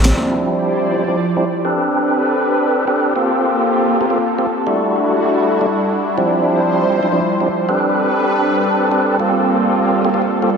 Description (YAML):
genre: drum and bass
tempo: 159 BPM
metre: 4/4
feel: straight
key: D dorian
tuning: A4 = 441 Hz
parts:
  - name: lush unison pad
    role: sustained chords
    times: 0.4-10.6 s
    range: F3 to D5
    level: -17 LUFS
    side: equal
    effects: chorus, phaser
  - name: tonewheel organ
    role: stabs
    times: 0.1-10.5 s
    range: F3 to B4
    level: -16 LUFS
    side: right 1 dB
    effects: overdrive, fast rotary speaker, low-pass filter, dub echo
room: wet echo chamber reverb, RT60 2.2 s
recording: dense, heavily limited modern master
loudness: -14 LUFS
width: side -6 dB against mid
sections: 0.1-10.6 A section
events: filter sweep on tonewheel organ 0.1-10.6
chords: 0.1 Dm11; 1.6 Am11; 3.2 Gm11; 4.7 Em11; 6.2 Dm11; 7.7 Am11; 9.2 Gm11